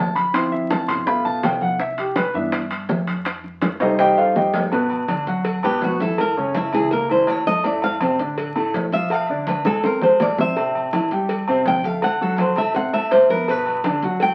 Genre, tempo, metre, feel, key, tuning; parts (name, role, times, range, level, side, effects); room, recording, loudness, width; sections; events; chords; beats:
Afro-Cuban jazz; 164 BPM; 4/4; straight; G major; A4 = 438 Hz
warm upright piano; accompaniment; 0.0-14.3 s; A2 to C6; -24 LUFS; equal
upright bass; bass; 0.0-14.3 s; G1 to A2; -42 LUFS; equal
congas; percussion; 0.2-14.3 s; -31 LUFS; equal
timbales and agogo bells; percussion; 0.2-14.3 s; -28 LUFS; equal
bongos and cowbell; percussion; 0.3-14.3 s; -30 LUFS; equal
flamenco guitar; melody; 5.6-14.3 s; C#4 to G5; -22 LUFS; equal
moderate studio reverb, RT60 0.6 s; very old 78 rpm record, vinyl crackle; -20 LUFS; mono
0.0-4.7 A section; 4.7-14.3 A section
upright piano solo 0.0-4.7; drum fill 3.8-4.7, 9.7-10.6; nylon-string guitar solo 4.7-14.3
0.3 Dm7; 1.1 G7; 1.8 Cmaj9; 3.3 F9; 4.7 Gmaj7; 6.2 F#7; 7.6 F6; 9.1 Bdim; 9.8 Eaug; 10.6 Am7; 12.0 D7; 13.5 Gmaj7
| 0.34 0.71 1.07 1.44 | 1.80 2.17 2.53 2.90 | 3.26 3.63 3.99 4.36 | 4.72 5.09 5.45 5.82 | 6.18 6.55 6.91 7.28 | 7.64 8.01 8.38 8.74 | 9.11 9.47 9.84 10.20 | 10.56 10.93 11.29 11.66 | 12.02 12.39 12.75 13.12 | 13.48 13.85 14.21